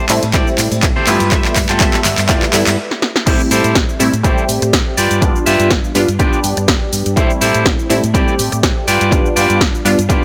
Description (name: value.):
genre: filtered disco house.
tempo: 123 BPM.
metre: 4/4.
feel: swing 54% on 16ths.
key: A minor.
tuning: A4 = 440 Hz.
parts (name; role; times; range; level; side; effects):
funky polysynth comp; accompaniment; 0.0-10.2 s; G3 to E5; -20 LUFS; equal; chorus, phaser, sidechain pumping, low-pass filter.
clean electric guitar; riff; 0.0-10.2 s; E4 to E5; -20 LUFS; equal; sidechain pumping, low-pass filter.
hollow-body short-scale fingered electric bass; bass; 0.1-10.2 s; G1 to A2; -22 LUFS; equal; sidechain pumping, low-pass filter.
punchy analog drum machine; drums; 0.1-10.2 s; cabasa, crash cymbal, handclaps, hi-hat, snare drum; -20 LUFS; equal; sidechain pumping on perc, sidechain pumping on hats, sidechain pumping on cymbals.
tambourine and congas; percussion; 0.2-2.8 s; none; -30 LUFS; equal; none.
electronic kick drum; drums; 0.3-10.2 s; none; -18 LUFS; equal; none.
room: light reverb.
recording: none.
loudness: -14 LUFS.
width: mono.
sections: 0.0-3.3 A section; 3.3-10.2 B section.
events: build-up 0.0-3.3; drum fill 0.0-2.8, 2.9-3.3; stop 2.8-3.3; drop 3.3-10.2.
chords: 0.0 Am7; 1.1 G7; 3.3 Am7; 5.0 G7; 7.2 Am7; 8.9 G7.